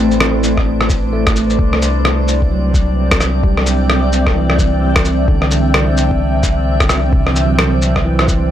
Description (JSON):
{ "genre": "future garage", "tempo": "130 BPM", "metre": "4/4", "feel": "swing 60% on 16ths", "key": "unclear", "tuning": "A4 = 440 Hz", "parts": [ { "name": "bell-like tine electric piano", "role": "accompaniment", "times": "0.0-8.5 s", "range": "C3 to D4", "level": "-20 LUFS", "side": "right 2 dB", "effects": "medium stereo tremolo, vintage 12-bit sampler grit, sidechain pumping, analog delay" }, { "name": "granular cloud pad", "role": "sustained chords", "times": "0.0-8.5 s", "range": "A3 to G5", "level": "-19 LUFS", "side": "equal", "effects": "built-in reverb, sidechain pumping" }, { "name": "warm sub bass", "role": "bass", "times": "0.0-8.5 s", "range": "A1 to C2", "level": "-17 LUFS", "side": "equal", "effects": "sidechain pumping" }, { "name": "drifting glass-harmonics texture", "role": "texture", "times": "0.0-8.5 s", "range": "D4 to D5", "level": "-24 LUFS", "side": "left 4 dB", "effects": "chorus, built-in reverb" }, { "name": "electronic shaker, rim click and cabasa", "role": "drums", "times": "0.1-8.4 s", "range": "none", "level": "-17 LUFS", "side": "equal", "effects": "none" }, { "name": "electronic kick drum", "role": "drums", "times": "0.6-8.4 s", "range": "none", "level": "-16 LUFS", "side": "equal", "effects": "none" } ], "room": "little or no reverb", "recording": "dry, gritty hardware recording, transformer saturation", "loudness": "-12 LUFS", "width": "side -11 dB against mid", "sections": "0.0-8.5 A section", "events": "none", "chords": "0.0 Am; 1.6 C" }